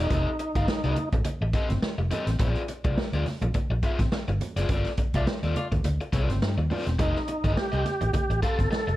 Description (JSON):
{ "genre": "funk", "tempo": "105 BPM", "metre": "4/4", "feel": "swing 56% on 16ths", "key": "unclear", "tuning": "A4 = 440 Hz", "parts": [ { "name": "tonewheel organ", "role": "melody", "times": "0.0-1.1, 7.0-9.0 s", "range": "Eb4 to A4", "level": "-30 LUFS", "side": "right 1 dB", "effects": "overdrive, chorus vibrato, stopped rotary speaker" }, { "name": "overdriven electric guitar", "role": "accompaniment", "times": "0.0-8.9 s", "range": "C4 to F5", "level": "-32 LUFS", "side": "left 2 dB", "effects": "none" }, { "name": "vintage muted fingered electric bass", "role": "bass", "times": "0.0-9.0 s", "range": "E1 to G2", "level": "-27 LUFS", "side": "equal", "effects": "none" }, { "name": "swinging big-band drum kit", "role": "drums", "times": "0.1-9.0 s", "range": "hi-hat, kick drum, snare drum", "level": "-28 LUFS", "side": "equal", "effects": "none" }, { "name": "congas", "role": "percussion", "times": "0.1-8.9 s", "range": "none", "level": "-35 LUFS", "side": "right 3 dB", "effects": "none" }, { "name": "mellow horn section", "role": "second line", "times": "5.2-5.7 s", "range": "A3 to D5", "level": "-34 LUFS", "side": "left 2 dB", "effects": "none" } ], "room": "small room ambience", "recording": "cassette tape", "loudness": "-24 LUFS", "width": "side -16 dB against mid", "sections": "0.0-9.0 A section", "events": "band accent 4.7-7.0", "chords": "0.0 F9; 2.4 Bb9; 4.7 G9sus4; 7.0 F9" }